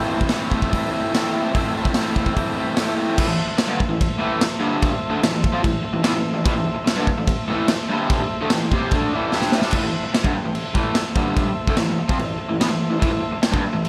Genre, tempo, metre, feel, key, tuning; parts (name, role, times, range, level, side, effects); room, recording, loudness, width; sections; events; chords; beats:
garage rock duo or trio; 146 BPM; 4/4; straight; A minor; A4 = 441 Hz
combo organ; sustained chords; 0.0-13.9 s; A4 to C6; -32 LUFS; equal
raw garage guitar; riff; 0.0-13.9 s; G2 to G4; -25 LUFS; equal; overdrive
raw garage drum kit; drums; 0.2-13.9 s; crash cymbal, hi-hat, kick drum, snare drum; -24 LUFS; equal
light reverb, studio ambience; -21 LUFS; mono
0.0-3.2 A section; 3.2-9.7 B section; 9.7-13.9 C section
transistor combo organ fill 8.5-9.7; drum fill 9.3-9.7
0.0 Am
0.32 0.72 1.14 | 1.54 1.96 2.37 2.78 | 3.19 3.60 4.01 4.42 | 4.83 5.24 5.65 6.06 | 6.47 6.88 7.29 7.70 | 8.11 8.52 8.93 9.34 | 9.75 10.16 10.57 10.98 | 11.39 11.80 12.21 12.63 | 13.04 13.45 13.86